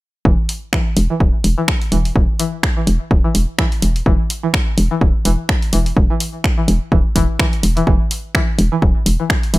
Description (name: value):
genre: minimal techno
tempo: 126 BPM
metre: 4/4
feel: swing 57% on 16ths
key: unclear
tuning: A4 = 440 Hz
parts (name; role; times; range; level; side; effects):
- string-like resonator pluck; riff; 0.3-9.6 s; E3; -22 LUFS; equal; chorus, sidechain pumping, digital delay
- hollow knocking FM bass; bass; 0.3-9.6 s; D1 to E1; -16 LUFS; equal; sidechain pumping
- electronic kick drum; drums; 0.3-9.4 s; none; -16 LUFS; equal; studio ambience
- punchy analog drum machine; drums; 0.5-9.6 s; finger snaps, hi-hat; -22 LUFS; equal; studio ambience
room: digital ambience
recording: none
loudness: -14 LUFS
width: side -19 dB against mid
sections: 0.3-9.6 A section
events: none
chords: none